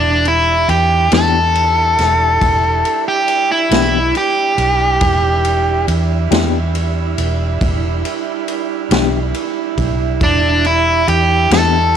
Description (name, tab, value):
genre	slow blues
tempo	46 BPM (dotted quarters)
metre	12/8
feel	straight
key	E minor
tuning	A4 = 441 Hz
part	biting overdriven guitar	melody	0.0-12.0 s	D4 to A4	-13 LUFS	equal	none
part	mellow saxophone section	sustained chords	0.0-12.0 s	G3 to E4	-23 LUFS	right 14 dB	none
part	vintage muted fingered electric bass	bass	0.0-12.0 s	E1 to E2	-17 LUFS	equal	tube saturation
part	vintage drum kit	drums	0.3-11.7 s	kick drum, ride cymbal, snare drum	-21 LUFS	equal	none
part	mellow electric guitar	accompaniment	1.1-11.8 s	E3 to G4	-20 LUFS	left 14 dB	tremolo
room	light reverb, small room ambience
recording	1960s-style stereo with parts hard left and right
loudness	-12 LUFS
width	side -8 dB against mid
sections	0.0-12.0 A section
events	overdriven electric guitar solo 0.0-12.0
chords	0.0 Em7